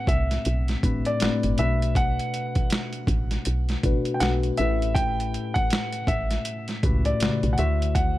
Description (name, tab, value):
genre	R&B, neo-soul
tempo	80 BPM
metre	4/4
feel	swing 59% on 16ths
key	unclear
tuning	A4 = 440 Hz
part	clear grand piano	melody	0.0-8.2 s	D5 to G5	-29 LUFS	equal	none
part	tine electric piano	accompaniment	0.0-8.2 s	A2 to C5	-28 LUFS	left 3 dB	phaser
part	woody FM bass	bass	0.1-8.2 s	G1 to D2	-25 LUFS	equal	none
part	boom bap sampler-style drum kit	drums	0.1-8.2 s	hi-hat, kick drum, snare drum	-26 LUFS	equal	overdrive
room	digital ambience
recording	none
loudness	-22 LUFS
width	side -16 dB against mid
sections	0.0-8.2 A section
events	none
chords	0.0 Am11; 1.6 Bm7; 4.6 A13; 7.6 D9